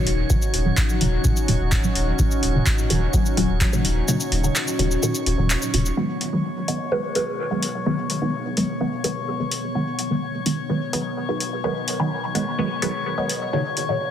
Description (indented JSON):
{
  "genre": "dub techno",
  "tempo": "127 BPM",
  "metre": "4/4",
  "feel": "straight",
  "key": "G# minor",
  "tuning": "A4 = 440 Hz",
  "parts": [
    { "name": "deep dark ambient pad", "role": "sustained chords", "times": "0.0-14.1 s", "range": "B3 to G#4", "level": "-29 LUFS", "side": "left 1 dB", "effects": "chorus, built-in reverb, sidechain pumping" },
    { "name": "filtered dub chord stab", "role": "stabs", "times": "0.0-14.0 s", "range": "A#2 to B3", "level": "-24 LUFS", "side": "equal", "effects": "phaser, sidechain pumping, dub echo" },
    { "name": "drifting glass-harmonics texture", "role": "texture", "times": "0.0-14.1 s", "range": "C#5", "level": "-32 LUFS", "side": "left 3 dB", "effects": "chorus, built-in reverb, sidechain pumping" },
    { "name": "warm sub bass", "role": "bass", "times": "0.1-5.9 s", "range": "D#1", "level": "-23 LUFS", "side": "equal", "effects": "sidechain pumping" },
    { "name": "booming analog drum machine", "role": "drums", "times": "0.1-13.9 s", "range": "cabasa, handclaps, hi-hat", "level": "-26 LUFS", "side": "left 1 dB", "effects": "none" },
    { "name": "electronic kick drum", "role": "drums", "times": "0.3-3.7 s", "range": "none", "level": "-22 LUFS", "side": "equal", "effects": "none" }
  ],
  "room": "moderate lush hall reverb, RT60 2.0 s",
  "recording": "dense, heavily limited modern master",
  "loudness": "-20 LUFS",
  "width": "side -10 dB against mid",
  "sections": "0.0-6.0 A section; 6.0-14.1 B section",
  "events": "filter sweep on synth stab 0.0-6.0; kick drops out 4.1-6.0; filter sweep on ambient pad 6.0-14.1",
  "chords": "0.0 D#m7; 6.0 G#m7; 13.5 D#m7"
}